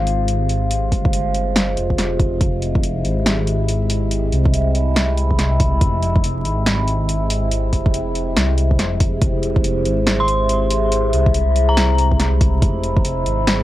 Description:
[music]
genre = deep dubstep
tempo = 141 BPM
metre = 4/4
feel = swing 62% on 16ths, half-time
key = F harmonic minor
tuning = A4 = 440 Hz
[part]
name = overtone-sweeping drone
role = sustained chords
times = 0.0-13.6 s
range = C3 to F4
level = -22 LUFS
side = equal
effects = chorus, built-in reverb, phaser
[part]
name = dark detuned saw bass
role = bass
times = 0.0-13.6 s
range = F1 to C2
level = -19 LUFS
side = equal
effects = none
[part]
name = deep house drum kit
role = drums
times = 0.1-13.6 s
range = hi-hat, snare drum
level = -21 LUFS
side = equal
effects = overdrive
[part]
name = electronic kick drum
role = drums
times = 0.9-13.0 s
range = none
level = -18 LUFS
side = equal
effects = overdrive
[part]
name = dark detuned synth bell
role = melody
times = 10.2-12.1 s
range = Bb5 to C6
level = -24 LUFS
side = left 1 dB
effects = chorus, cassette tape, dub echo
[sound]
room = little or no reverb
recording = home recording on cassette, vinyl crackle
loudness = -15 LUFS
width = side -15 dB against mid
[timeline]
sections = 0.0-13.6 A section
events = none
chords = 0.0 Fm

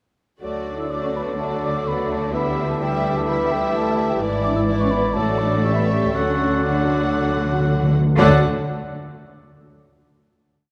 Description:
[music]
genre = quick classical-period movement for symphony orchestra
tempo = 116-129 BPM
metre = 4/4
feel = rubato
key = D major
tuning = A4 = 440 Hz
[part]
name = warm studio violin section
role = melody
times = 0.4-8.5 s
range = D5 to F#5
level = -34 LUFS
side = equal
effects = none
[part]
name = clear clarinet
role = second line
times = 0.4-8.4 s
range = E4 to A4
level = -33 LUFS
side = equal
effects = none
[part]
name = warm oboe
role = second line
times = 0.4-8.4 s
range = D5 to F#5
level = -34 LUFS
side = equal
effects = none
[part]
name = warm studio violin section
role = second line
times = 0.4-8.5 s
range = E4 to G4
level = -35 LUFS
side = equal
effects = none
[part]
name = mellow bassoon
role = accompaniment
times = 0.4-8.4 s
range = E3 to G3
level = -29 LUFS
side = equal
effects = none
[part]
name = rich studio viola section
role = accompaniment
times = 0.4-8.5 s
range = E3 to A3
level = -32 LUFS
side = equal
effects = none
[part]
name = rich studio cello section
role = bass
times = 0.4-8.5 s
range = G#2 to D3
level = -29 LUFS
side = equal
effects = none
[part]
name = warm studio double bass section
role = bass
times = 0.4-8.5 s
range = G#1 to D2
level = -29 LUFS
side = equal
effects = none
[part]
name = mellow French horn section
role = sustained chords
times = 0.6-8.4 s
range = G3 to E4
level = -29 LUFS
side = equal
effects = none
[part]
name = concert flute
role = second line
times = 0.7-8.5 s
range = G5 to E6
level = -30 LUFS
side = equal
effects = none
[part]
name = timpani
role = percussion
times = 5.2-8.4 s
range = A2 to D3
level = -26 LUFS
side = equal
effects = none
[sound]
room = wet concert hall reverb, RT60 2.3 s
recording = none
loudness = -20 LUFS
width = mono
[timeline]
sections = 0.4-8.2 A section; 8.2-10.2 final chord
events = timpani fill 6.2-8.2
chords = 0.4 D; 2.3 Em/D; 4.2 E7/G#; 5.2 D/A; 5.7 A7; 6.2 D

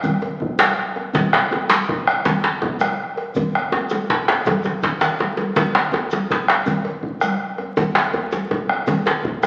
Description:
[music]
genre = west african traditional, West African drum ensemble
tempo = 109 BPM (dotted quarters)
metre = 12/8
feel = straight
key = none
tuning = none
[part]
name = cowbell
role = percussion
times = 0.0-9.5 s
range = none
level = -32 LUFS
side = equal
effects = none
[part]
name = djembe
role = percussion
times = 0.0-9.5 s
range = none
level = -34 LUFS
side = equal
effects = none
[part]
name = shekere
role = percussion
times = 0.0-9.5 s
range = none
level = -41 LUFS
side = equal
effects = none
[part]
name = congas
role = percussion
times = 0.1-9.5 s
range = none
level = -28 LUFS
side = equal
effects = none
[part]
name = bombo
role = percussion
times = 0.4-9.5 s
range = none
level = -25 LUFS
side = equal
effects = none
[part]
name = djembe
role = percussion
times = 0.6-9.5 s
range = none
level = -22 LUFS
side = equal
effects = none
[sound]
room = wet large studio reverb, RT60 1.4 s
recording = very old 78 rpm record, vinyl crackle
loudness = -20 LUFS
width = mono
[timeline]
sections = 0.0-9.5 A section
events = drum fill 4.6-5.6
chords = none

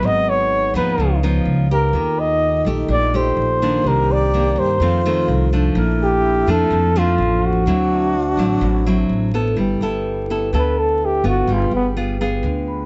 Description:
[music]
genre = bossa nova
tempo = 126 BPM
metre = 4/4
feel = straight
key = unclear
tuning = A4 = 440 Hz
[part]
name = breathy flugelhorn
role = melody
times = 0.0-11.9 s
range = B3 to Eb5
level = -21 LUFS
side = equal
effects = none
[part]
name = nylon-string guitar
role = accompaniment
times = 0.0-12.9 s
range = F2 to A4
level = -24 LUFS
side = equal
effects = none
[part]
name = vibraphone with soft mallets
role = accompaniment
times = 0.0-12.9 s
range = Bb3 to F6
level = -31 LUFS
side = equal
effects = none
[part]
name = upright bass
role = bass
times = 0.0-12.9 s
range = G1 to G2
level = -23 LUFS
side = equal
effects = none
[part]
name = breathy wooden-headed alto flute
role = second line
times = 1.9-9.3 s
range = D4 to G4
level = -27 LUFS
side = equal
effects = none
[sound]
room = moderate studio reverb, RT60 0.6 s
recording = vinyl crackle, nothing above 7.9 kHz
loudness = -18 LUFS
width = mono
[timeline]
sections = 0.0-9.6 A section; 9.6-12.9 B section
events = flugelhorn solo 9.6-12.9; vibraphone fill 12.4-12.9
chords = 0.0 Abm7; 1.0 C#9; 1.9 Ebmaj9#11; 3.8 Cm9; 4.8 F7; 5.8 Bbmaj7; 7.7 D9; 9.6 G69; 11.5 G7b9

